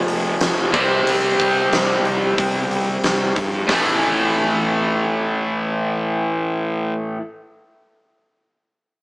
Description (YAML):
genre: hard rock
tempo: 91 BPM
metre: 4/4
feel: straight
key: A minor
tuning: A4 = 441 Hz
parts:
  - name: overdriven electric guitar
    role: riff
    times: 0.0-7.2 s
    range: F2 to C4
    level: -24 LUFS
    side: left 1 dB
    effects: spring reverb
  - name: overdriven semi-hollow guitar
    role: riff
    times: 0.0-7.2 s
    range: F2 to C4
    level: -20 LUFS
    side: equal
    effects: none
  - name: fuzz fingered electric bass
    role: bass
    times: 0.1-6.9 s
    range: F1 to G2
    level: -26 LUFS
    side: equal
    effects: overdrive
  - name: huge arena drum kit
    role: drums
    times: 0.1-3.8 s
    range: hi-hat, kick drum, snare drum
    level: -22 LUFS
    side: equal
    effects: none
room: moderate studio reverb, RT60 0.8 s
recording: band playing live in one room, small speaker sound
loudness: -17 LUFS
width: side -28 dB against mid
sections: 0.0-3.7 A section; 3.7-6.3 B section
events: none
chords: 0.0 F5; 0.7 C5; 3.7 A5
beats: 0.41 | 1.07 1.72 2.38 3.04 | 3.69 4.35 5.01 5.66